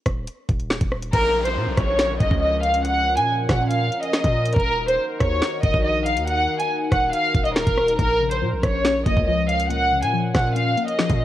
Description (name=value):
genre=hip hop, drill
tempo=140 BPM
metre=4/4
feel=half-time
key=Bb minor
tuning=A4 = 440 Hz
part: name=hard-hitting 808-style bass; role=bass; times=0.1-11.2 s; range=Eb1 to Bb2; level=-26 LUFS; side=equal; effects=none
part: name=drill drum kit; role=drums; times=0.1-11.2 s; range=crash cymbal, finger snaps, hi-hat, kick drum, rim click, snare drum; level=-22 LUFS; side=equal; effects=overdrive, cassette tape
part: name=warm studio violin section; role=melody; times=1.1-11.2 s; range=Bb4 to Ab5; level=-21 LUFS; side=equal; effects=low-pass filter, analog delay
part: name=dark analog pad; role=sustained chords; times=1.1-11.2 s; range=Eb3 to Bb4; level=-29 LUFS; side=equal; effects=chorus, phaser
part: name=downlifter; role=sound effects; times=1.1-4.6 s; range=none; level=-34 LUFS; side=equal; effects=none
part: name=warbly dusty pluck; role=accompaniment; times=8.0-11.2 s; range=Bb2 to Db4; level=-28 LUFS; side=left 8 dB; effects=chorus, low-pass filter
room=little or no reverb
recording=home recording on cassette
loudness=-18 LUFS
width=side -13 dB against mid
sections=0.0-1.1 A section; 1.1-11.2 B section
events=break 0.0-1.1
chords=0.0 Eb5; 1.1 Bbm; 4.6 Ebm; 8.0 Bbm